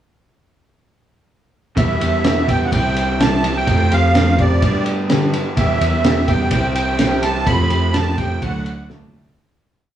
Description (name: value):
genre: folk rock and heartland rock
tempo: 126 BPM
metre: 4/4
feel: straight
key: unclear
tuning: A4 = 439 Hz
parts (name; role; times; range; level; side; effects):
- musette accordion; melody; 1.8-8.9 s; D5 to B5; -21 LUFS; right 3 dB; none
- picked plugged-in steel-string acoustic guitar; accompaniment; 1.8-9.4 s; E2 to G4; -23 LUFS; left 1 dB; none
- raw garage guitar; riff; 1.8-9.4 s; E2 to G4; -24 LUFS; right 1 dB; overdrive
- fingered electric bass; bass; 1.8-9.4 s; C2 to G2; -20 LUFS; equal; none
- cloth-damped thuddy drum kit; drums; 1.8-9.4 s; kick drum, ride cymbal, snare drum, toms; -20 LUFS; right 1 dB; none
room: moderate studio reverb, RT60 0.5 s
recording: band playing live in one room, studio reverb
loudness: -14 LUFS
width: side -11 dB against mid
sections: 1.8-9.4 pre-chorus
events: fade-out 7.5-9.4; drum fill 8.9-9.4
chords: 1.8 Em; 2.7 C; 3.7 Fadd9; 4.6 G; 5.6 Em; 6.5 C; 7.5 Fadd9; 8.4 Dadd9